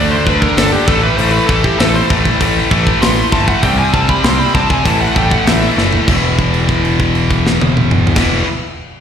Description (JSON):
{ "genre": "heavy metal", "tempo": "98 BPM", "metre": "4/4", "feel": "straight", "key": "E minor", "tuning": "A4 = 442 Hz", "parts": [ { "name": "high-gain lead guitar", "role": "melody", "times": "0.0-5.7 s", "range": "G4 to C6", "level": "-18 LUFS", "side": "right 2 dB", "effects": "distortion, slapback echo, digital delay" }, { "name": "high-gain distorted guitar", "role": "riff", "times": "0.0-8.5 s", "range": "E2 to D4", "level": "-16 LUFS", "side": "left 10 dB", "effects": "distortion, slapback echo" }, { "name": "scooped high-gain guitar", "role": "riff", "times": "0.0-8.5 s", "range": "E2 to D4", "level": "-19 LUFS", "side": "right 16 dB", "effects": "distortion, slapback echo" }, { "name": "growling picked electric bass", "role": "bass", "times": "0.0-8.4 s", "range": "E1 to D2", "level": "-17 LUFS", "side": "equal", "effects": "overdrive" }, { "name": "tight metal drum kit", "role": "drums", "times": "0.3-8.3 s", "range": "crash cymbal, hi-hat, kick drum, snare drum, toms", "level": "-16 LUFS", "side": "equal", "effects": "none" } ], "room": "light reverb", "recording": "live gig heard through the venue's PA, recital hall reverb", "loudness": "-10 LUFS", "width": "side -8 dB against mid", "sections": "0.0-6.1 A section; 6.1-8.5 B section", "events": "lead electric guitar solo 0.0-6.1; drum fill 5.8-6.1; held note 6.1-8.2", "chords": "0.0 D5; 0.9 A5; 3.6 C5; 4.9 A5; 6.1 E5", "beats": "0.57 | 1.18 1.79 2.40 3.02 | 3.63 4.24 4.85 5.47 | 6.08 6.69 7.31 7.92" }